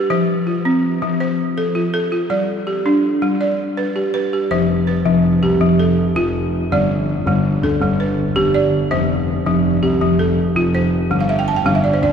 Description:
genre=west african traditional, West African string and xylophone music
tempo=109 BPM (dotted quarters)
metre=12/8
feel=straight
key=F lydian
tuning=A4 = 439 Hz
part: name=balafon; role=arpeggios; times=0.0-12.1 s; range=F3 to A5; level=-16 LUFS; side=equal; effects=none
part: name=dark baby grand piano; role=bass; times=4.5-12.1 s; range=F1 to D2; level=-18 LUFS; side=equal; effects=none
room=wet cathedral reverb, RT60 6.0 s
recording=recorded in a church or concert hall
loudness=-15 LUFS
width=side -7 dB against mid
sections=0.0-4.5 A section; 4.5-12.1 B section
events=balafon fill 11.2-12.1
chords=0.1 F; 2.3 G; 4.5 F; 6.7 G; 8.9 F; 11.1 G5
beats=| 0.11 0.66 1.21 1.75 | 2.31 2.86 3.41 3.96 | 4.51 5.06 5.61 6.16 | 6.71 7.26 7.81 8.36 | 8.91 9.46 10.01 10.56 | 11.11 11.66

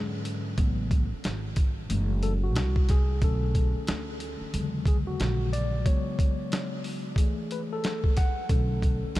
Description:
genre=hip hop, jazz-hop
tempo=91 BPM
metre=4/4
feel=swing 61% on 16ths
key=B dorian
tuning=A4 = 441 Hz
part: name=mellow tine electric piano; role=accompaniment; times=0.0-9.2 s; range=C#3 to F#5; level=-32 LUFS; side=left 2 dB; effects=fast stereo tremolo
part: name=upright bass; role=bass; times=0.0-9.2 s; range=F#1 to G#2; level=-29 LUFS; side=equal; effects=none
part: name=boom bap sampler-style drum kit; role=drums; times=0.3-9.2 s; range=hi-hat, kick drum, snare drum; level=-27 LUFS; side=equal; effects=none
room=light reverb, digital ambience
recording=none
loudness=-25 LUFS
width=side -16 dB against mid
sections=0.0-9.2 A section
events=tine electric piano solo 0.0-9.2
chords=0.0 E13 (rootless); 0.6 Amaj13; 1.9 F#m9; 3.2 Bm9; 4.5 E13; 5.9 C#7sus4; 7.2 Eadd11; 8.5 Bm9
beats=| 0.58 1.24 1.90 2.56 | 3.22 3.88 4.54 5.20 | 5.86 6.51 7.17 7.83 | 8.49 9.15

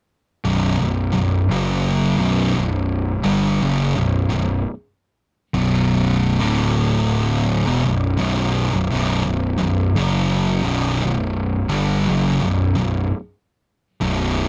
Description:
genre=metal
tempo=57 BPM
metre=4/4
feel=swing 64% on 8ths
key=B minor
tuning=A4 = 439 Hz
part: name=thick fuzz guitar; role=riff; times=0.4-14.5 s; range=B1 to G3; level=-24 LUFS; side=equal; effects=distortion
part: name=thick fuzz guitar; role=riff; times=0.4-14.5 s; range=B1 to G3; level=-23 LUFS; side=equal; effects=distortion
part: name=fuzz picked electric bass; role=bass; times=0.5-14.5 s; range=B0 to G1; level=-26 LUFS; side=equal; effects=overdrive
room=light reverb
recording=none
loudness=-20 LUFS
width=mono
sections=0.5-14.5 A section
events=none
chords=0.5 Bm; 6.3 D5; 7.6 B5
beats=| 0.45 1.51 2.56 3.62 | 4.68 5.74 6.80 7.86 | 8.91 9.97 11.03 12.09 | 13.15 14.21

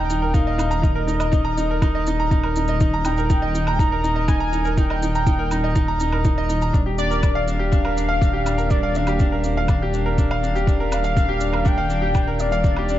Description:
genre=piano and strings electronica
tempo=122 BPM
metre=4/4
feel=straight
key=Eb major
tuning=A4 = 438 Hz
part: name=warm velvety synth lead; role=melody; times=0.0-13.0 s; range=D5 to Bb5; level=-27 LUFS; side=left 1 dB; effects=chorus, vintage 12-bit sampler grit
part: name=bright grand piano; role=riff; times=0.0-13.0 s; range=D4 to Bb5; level=-23 LUFS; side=right 1 dB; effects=ping-pong delay
part: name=dark detuned saw bass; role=bass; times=0.0-13.0 s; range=Eb1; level=-23 LUFS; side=equal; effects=sidechain pumping
part: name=shaker and woodblock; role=drums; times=0.1-13.0 s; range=none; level=-35 LUFS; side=right 2 dB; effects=overdrive
part: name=electronic kick drum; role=drums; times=0.3-12.7 s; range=none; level=-19 LUFS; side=equal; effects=overdrive
room=digital ambience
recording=dark, warm production, nothing above 7.6 kHz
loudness=-18 LUFS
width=side -13 dB against mid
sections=0.0-13.0 A section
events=none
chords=0.0 Eb; 6.7 Gm7/Eb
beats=0.35 | 0.84 1.33 1.82 2.31 | 2.81 3.30 3.79 4.28 | 4.77 5.26 5.76 6.25 | 6.74 7.23 7.72 8.21 | 8.71 9.20 9.69 10.18 | 10.67 11.17 11.66 12.15 | 12.64

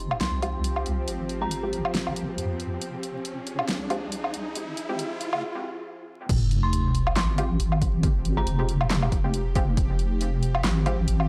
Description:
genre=deep dubstep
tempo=138 BPM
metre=4/4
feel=swing 56% on 16ths, half-time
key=F minor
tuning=A4 = 441 Hz
part: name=bowed-like drone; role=sustained chords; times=0.0-11.3 s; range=F3 to Ab4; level=-38 LUFS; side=equal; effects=built-in reverb
part: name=deep soft wobble bass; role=bass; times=0.0-11.3 s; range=F1 to F2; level=-29 LUFS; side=equal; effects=chorus, transformer saturation
part: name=riser and sub drop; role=sound effects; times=1.3-8.0 s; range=none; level=-35 LUFS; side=equal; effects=none
part: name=deep house drum kit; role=drums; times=0.1-11.3 s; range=crash cymbal, handclaps, hi-hat, snare drum, woodblock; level=-32 LUFS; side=equal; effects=overdrive, studio reverb
part: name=dark detuned synth bell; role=melody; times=0.2-1.7, 6.6-8.7 s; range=Bb5 to C6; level=-38 LUFS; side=equal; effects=chorus, dub echo
part: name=filtered dub chord stab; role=stabs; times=0.4-11.0 s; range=Ab3 to G4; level=-38 LUFS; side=equal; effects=chorus, dub echo
part: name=electronic kick drum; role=drums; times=6.3-9.9 s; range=none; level=-28 LUFS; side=equal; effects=overdrive, studio reverb
room=digital ambience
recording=dry, gritty hardware recording, vinyl crackle, high-pass filter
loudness=-26 LUFS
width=mono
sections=0.0-6.3 A section; 6.3-11.3 B section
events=build-up 0.0-6.3; filter sweep on synth stab 0.0-6.3; riser 1.3-5.4; break 5.4-6.3; drop 6.3-11.3; impact 6.3-8.0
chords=0.0 Fmadd9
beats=0.21 0.64 | 1.08 1.51 1.95 2.38 | 2.81 3.25 3.69 4.12 | 4.55 4.99 5.42 5.86 | 6.29 6.73 7.16 7.60 | 8.03 8.47 8.90 9.34 | 9.77 10.21 10.64 11.08

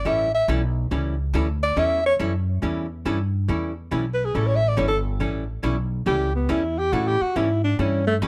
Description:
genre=country, western swing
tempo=140 BPM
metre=4/4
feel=swing 66% on 8ths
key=A mixolydian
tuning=A4 = 440 Hz
part: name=breathy alto saxophone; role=melody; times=0.0-8.2 s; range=A3 to E5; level=-24 LUFS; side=equal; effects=plate reverb
part: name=upright bass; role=bass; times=0.0-8.3 s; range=G1 to A2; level=-27 LUFS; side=equal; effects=none
part: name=archtop guitar, miked and amplified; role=accompaniment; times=0.1-8.3 s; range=E3 to A4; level=-30 LUFS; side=equal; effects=none
room=light reverb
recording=none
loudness=-23 LUFS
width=mono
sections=0.0-3.5 A section; 3.5-8.3 A section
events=alto saxophone solo 0.0-3.5, 3.5-8.3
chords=0.1 A7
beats=| 0.06 0.48 0.91 1.34 | 1.77 2.20 2.63 3.06 | 3.49 3.92 4.35 4.78 | 5.21 5.64 6.07 6.50 | 6.93 7.36 7.79 8.22

